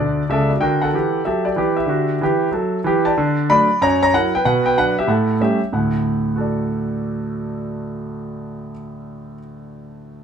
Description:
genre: jazz, stride piano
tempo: 188 BPM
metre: 4/4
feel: swing 62% on 8ths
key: D major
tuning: A4 = 440 Hz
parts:
  - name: warm concert grand piano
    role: solo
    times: 0.0-10.2 s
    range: C#2 to B5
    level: -17 LUFS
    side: equal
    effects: none
room: wet studio reverb, RT60 0.8 s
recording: heard from further back in the room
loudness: -16 LUFS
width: side -7 dB against mid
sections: 0.6-5.7 A section; 5.7-8.3 B section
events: grand piano fill 0.0-0.6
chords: 0.0 D; 0.6 Gm/D; 1.9 A5/D; 3.2 D; 3.8 F#7; 4.4 Bm; 5.1 A7; 5.7 D

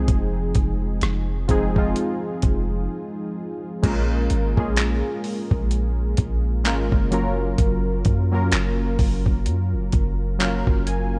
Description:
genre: contemporary R&B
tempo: 64 BPM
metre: 4/4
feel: swing 58% on 16ths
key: Bb minor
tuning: A4 = 440 Hz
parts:
  - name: warm analog keys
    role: accompaniment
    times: 0.0-11.2 s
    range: F3 to Ab5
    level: -27 LUFS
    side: equal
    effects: chorus
  - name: warm 808-style bass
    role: bass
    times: 0.0-11.2 s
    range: F1 to Gb2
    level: -25 LUFS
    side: equal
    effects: none
  - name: dusty soul sampler-style drum kit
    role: drums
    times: 0.1-11.1 s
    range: crash cymbal, handclaps, hi-hat, kick drum, rim click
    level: -25 LUFS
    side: equal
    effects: overdrive, vintage 12-bit sampler grit
room: digital ambience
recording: dark, warm production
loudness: -22 LUFS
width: mono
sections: 0.0-3.8 A section; 3.8-11.2 B section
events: break 2.9-3.8; synth keys fill 9.9-11.2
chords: 0.0 Fm7; 3.8 Bbm7

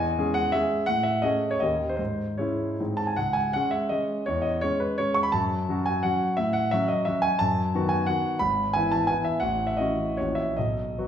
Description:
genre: classical, romantic triple-time dance for piano with dotted rhythms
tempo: 141-191 BPM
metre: 3/4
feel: rubato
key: C# minor, E major from 7.4 s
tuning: A4 = 440 Hz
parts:
  - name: warm grand piano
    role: solo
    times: 0.0-11.1 s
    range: G#1 to C#6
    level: -23 LUFS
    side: equal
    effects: none
room: wet recital hall reverb, RT60 1.5 s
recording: recorded in a church or concert hall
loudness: -23 LUFS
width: side -9 dB against mid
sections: 0.0-3.2 A section; 3.2-11.1 A section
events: none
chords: 0.0 C#m/E; 0.9 Amaj7; 1.6 D#7; 2.0 C#m/G#; 2.8 G#; 3.2 C#5; 4.3 C#m/E; 5.3 F#m; 6.4 F#m/A; 7.4 B7/F#; 8.4 E/G#; 9.4 F#m7/A; 10.2 F#7/A#; 10.6 B

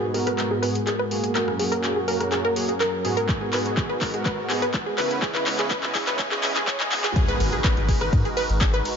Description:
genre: progressive house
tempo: 124 BPM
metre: 4/4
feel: straight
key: G# minor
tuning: A4 = 440 Hz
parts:
  - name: filtered supersaw swell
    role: sustained chords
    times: 0.0-9.0 s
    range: F#2 to D#5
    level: -30 LUFS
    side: equal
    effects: sidechain pumping, low-pass filter
  - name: soft supersaw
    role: stabs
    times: 0.0-7.4 s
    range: G#2 to C#5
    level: -28 LUFS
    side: right 2 dB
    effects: sidechain pumping, low-pass filter, digital delay
  - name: wide unison pluck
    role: arpeggios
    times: 0.1-8.8 s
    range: G#4 to G#5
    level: -27 LUFS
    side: equal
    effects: sidechain pumping, digital delay
  - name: deep house drum kit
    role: drums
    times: 0.1-9.0 s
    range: handclaps, hi-hat, ride cymbal, rim click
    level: -27 LUFS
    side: left 1 dB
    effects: overdrive, sidechain pumping on hats, sidechain pumping on cymbals
  - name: electronic kick drum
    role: drums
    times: 3.3-8.7 s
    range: none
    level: -23 LUFS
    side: equal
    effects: overdrive
  - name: impact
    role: sound effects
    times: 7.2-9.0 s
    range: none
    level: -31 LUFS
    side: left 1 dB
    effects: none
  - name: round analog bass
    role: bass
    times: 7.4-8.8 s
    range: G#1 to G#2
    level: -24 LUFS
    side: equal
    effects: sidechain pumping
room: light reverb, digital ambience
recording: high-pass filter, nothing above 7.5 kHz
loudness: -21 LUFS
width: side -6 dB against mid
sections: 0.0-7.2 A section; 7.2-9.0 B section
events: build-up 0.0-7.2; drum fill 0.0-7.2; filter sweep on synth pluck 0.0-7.2; filter sweep on supersaw synth 0.0-7.2; filter sweep 0.0-7.2; drop 7.2-9.0; impact 7.2-9.0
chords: 0.0 G#m7; 1.4 F#add9; 3.3 G#m7; 5.2 C#m7; 7.2 G#m7

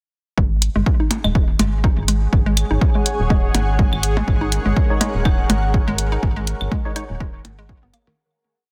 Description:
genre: minimal techno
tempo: 123 BPM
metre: 4/4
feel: swing 56% on 16ths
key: unclear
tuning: A4 = 440 Hz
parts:
  - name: hollow square pluck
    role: riff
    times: 0.4-8.1 s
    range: D#3 to D#4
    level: -28 LUFS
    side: equal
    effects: chorus, sidechain pumping, delay
  - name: rubbery square bass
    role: bass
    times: 0.4-7.9 s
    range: D#1 to G#1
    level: -23 LUFS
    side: equal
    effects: sidechain pumping
  - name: electronic kick drum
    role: drums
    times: 0.4-7.8 s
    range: none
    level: -21 LUFS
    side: equal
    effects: none
  - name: granular cloud pad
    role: texture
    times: 1.8-8.2 s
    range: G#4 to F#5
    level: -30 LUFS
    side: equal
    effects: built-in reverb, sidechain pumping
  - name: electronic hi-hat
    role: drums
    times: 0.6-8.0 s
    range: none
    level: -24 LUFS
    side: equal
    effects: none
  - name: percussion blips and claves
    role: percussion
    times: 1.1-8.2 s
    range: none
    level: -27 LUFS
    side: equal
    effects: dub echo
  - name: bubbling stepped-filter texture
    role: texture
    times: 4.3-8.2 s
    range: A#4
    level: -39 LUFS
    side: equal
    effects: chorus, built-in reverb, sidechain pumping
  - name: percussive organ stab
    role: stabs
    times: 4.9-7.0 s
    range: G#3 to C#5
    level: -32 LUFS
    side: equal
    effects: ensemble chorus, dub echo
room: digital ambience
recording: dense, heavily limited modern master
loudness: -19 LUFS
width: mono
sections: 0.4-8.2 groove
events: fade-out 5.6-8.2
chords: 0.4 G#sus4

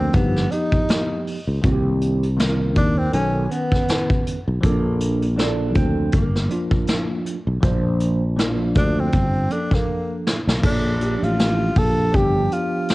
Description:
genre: hip hop, jazz-hop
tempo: 80 BPM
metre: 4/4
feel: swing 57% on 16ths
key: Bb major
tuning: A4 = 441 Hz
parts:
  - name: mellow tenor saxophone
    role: melody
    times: 0.0-4.3, 8.8-12.9 s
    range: Bb3 to A4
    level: -24 LUFS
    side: equal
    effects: cassette tape, analog delay
  - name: bell-like tine electric piano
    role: accompaniment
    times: 0.0-12.9 s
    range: Eb3 to C5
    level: -25 LUFS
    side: equal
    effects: slow stereo tremolo, cassette tape
  - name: sustaining fretless electric bass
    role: bass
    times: 0.0-12.5 s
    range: G1 to Eb2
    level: -21 LUFS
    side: equal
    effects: none
  - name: vintage brush drum kit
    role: drums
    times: 0.1-12.9 s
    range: crash cymbal, hi-hat, kick drum, snare drum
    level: -21 LUFS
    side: equal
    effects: cassette tape
  - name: mellow electric guitar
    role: second line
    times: 4.6-7.6 s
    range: Bb3 to D4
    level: -29 LUFS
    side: right 2 dB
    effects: cassette tape
room: light reverb, small room ambience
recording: home recording on cassette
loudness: -18 LUFS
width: side -20 dB against mid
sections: 0.0-10.6 A section; 10.6-12.9 B section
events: drum fill 9.9-10.6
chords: 0.1 Gaug7; 1.6 Cm7; 3.1 B9; 4.6 Bbmaj7; 12.1 G7

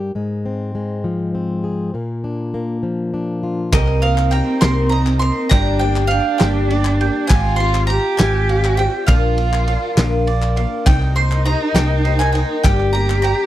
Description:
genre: indie folk with a building arrangement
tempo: 67 BPM (dotted quarters)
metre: 6/8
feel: straight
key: C minor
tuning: A4 = 440 Hz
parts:
  - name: fingerpicked plugged-in acoustic archtop guitar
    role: accompaniment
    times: 0.0-3.7 s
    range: G2 to Ab4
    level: -21 LUFS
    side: left 2 dB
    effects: none
  - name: bowl-back mandolin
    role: melody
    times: 3.7-13.5 s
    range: Eb5 to C6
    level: -23 LUFS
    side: right 2 dB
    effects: slapback echo
  - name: warm cello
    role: second line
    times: 3.7-13.5 s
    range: C4 to G4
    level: -22 LUFS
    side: right 2 dB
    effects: none
  - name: picked twelve-string acoustic guitar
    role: accompaniment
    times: 3.7-13.5 s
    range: G2 to Bb4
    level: -25 LUFS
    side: left 6 dB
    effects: none
  - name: mandolin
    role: arpeggios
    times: 3.7-13.5 s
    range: G3 to Bb5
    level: -27 LUFS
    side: right 8 dB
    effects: none
  - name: hollow-body short-scale fingered electric bass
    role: bass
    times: 3.7-13.3 s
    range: G1 to C2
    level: -18 LUFS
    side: equal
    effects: none
  - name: loose indie drum kit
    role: drums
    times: 3.7-13.4 s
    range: kick drum, ride cymbal, snare drum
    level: -17 LUFS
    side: equal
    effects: none
  - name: group handclap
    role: percussion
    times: 3.7-13.2 s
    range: none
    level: -29 LUFS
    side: left 7 dB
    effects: none
room: little or no reverb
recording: dry, close 1970s-style studio recording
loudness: -15 LUFS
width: side -13 dB against mid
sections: 0.0-3.7 A section; 3.7-13.5 B section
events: none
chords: 0.1 Fm/Ab; 1.9 Bb; 3.7 Cm7; 5.5 Gm; 7.3 Fmadd9/Ab; 9.1 Bb; 10.9 Cm7; 12.6 Gm

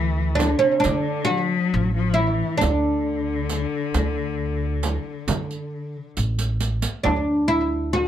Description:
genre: Arabic maqam ensemble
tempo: 135 BPM (eighths)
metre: 10/8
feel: straight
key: D maqam rast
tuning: A4 = 440 Hz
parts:
  - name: oud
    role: melody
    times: 0.0-8.1 s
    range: C4+50c to F#4-50c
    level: -21 LUFS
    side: right 1 dB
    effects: slapback echo, plate reverb
  - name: rich cello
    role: second line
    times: 0.0-6.2 s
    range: C3+47c to F#3-46c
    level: -26 LUFS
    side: left 6 dB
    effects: none
  - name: upright bass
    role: bass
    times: 0.0-8.1 s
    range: A1 to D3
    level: -25 LUFS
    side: right 1 dB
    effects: none
  - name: frame drum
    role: percussion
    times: 0.4-8.1 s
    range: none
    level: -28 LUFS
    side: right 4 dB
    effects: none
  - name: riq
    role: percussion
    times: 0.4-7.0 s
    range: none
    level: -31 LUFS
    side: right 5 dB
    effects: none
room: moderate small room reverb, RT60 0.6 s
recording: dark, warm production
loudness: -20 LUFS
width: side -10 dB against mid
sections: 0.0-7.1 A section; 7.1-8.1 B section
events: drum fill 6.2-7.1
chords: none

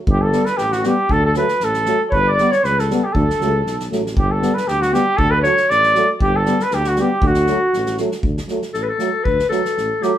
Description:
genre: balkan folk, Balkan brass band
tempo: 118 BPM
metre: 2/4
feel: swing 54% on 16ths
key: D major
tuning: A4 = 439 Hz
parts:
  - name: mellow trumpet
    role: melody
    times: 0.1-8.0 s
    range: F#4 to D5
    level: -17 LUFS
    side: right 1 dB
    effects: none
  - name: clear clarinet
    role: second line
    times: 0.1-10.2 s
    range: F#4 to D5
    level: -23 LUFS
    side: left 3 dB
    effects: none
  - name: mellow tuba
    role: bass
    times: 0.1-9.9 s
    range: G1 to D2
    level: -22 LUFS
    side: equal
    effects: none
  - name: natural country drum kit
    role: percussion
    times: 0.1-10.1 s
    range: kick drum, snare drum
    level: -24 LUFS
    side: equal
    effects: none
  - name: mellow euphonium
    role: accompaniment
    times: 0.3-10.1 s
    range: A3 to B3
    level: -24 LUFS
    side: left 4 dB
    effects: none
  - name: warm trombone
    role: accompaniment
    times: 0.3-10.1 s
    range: F#3 to G3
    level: -24 LUFS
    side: right 5 dB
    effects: none
room: wet studio reverb, RT60 0.7 s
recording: band playing live in one room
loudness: -15 LUFS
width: side -11 dB against mid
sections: 0.1-8.2 A section; 8.2-10.2 B section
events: clarinet solo 8.2-10.2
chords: 0.1 G; 1.1 D; 2.1 G; 3.1 D; 4.2 G; 5.2 D; 6.2 G; 7.2 D

